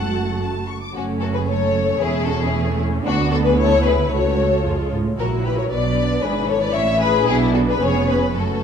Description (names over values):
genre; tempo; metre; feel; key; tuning
quick classical-period movement for string orchestra; 113 BPM; 2/4; straight; F# minor; A4 = 440 Hz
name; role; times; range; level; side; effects
warm studio violin section; melody; 0.0-8.6 s; C#4 to F#5; -27 LUFS; left 6 dB; none
rich symphonic violin section; second line; 0.0-8.6 s; F#4 to D6; -21 LUFS; left 5 dB; none
warm symphonic viola section; accompaniment; 0.0-8.6 s; E3 to F#4; -24 LUFS; right 2 dB; none
rich symphonic cello section; bass; 0.0-8.6 s; C#2 to B2; -25 LUFS; right 4 dB; none
warm studio double bass section; bass; 0.0-8.6 s; E1 to D2; -24 LUFS; right 3 dB; none
room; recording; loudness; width
wet recital hall reverb, RT60 1.5 s; dark, warm production; -17 LUFS; side -7 dB against mid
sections
1.0-8.6 A section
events
none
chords
0.0 F#m; 2.0 C#m/E; 3.1 Bm/D; 4.1 F#m/C#; 4.6 C#; 5.2 F#7/A#; 5.7 Bm; 6.2 E7/G#; 6.8 A; 7.3 Bm; 7.8 C#7/E#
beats
0.41 | 0.95 1.48 | 2.01 2.54 | 3.06 3.58 | 4.11 4.64 | 5.18 5.71 | 6.24 6.76 | 7.28 7.81 | 8.35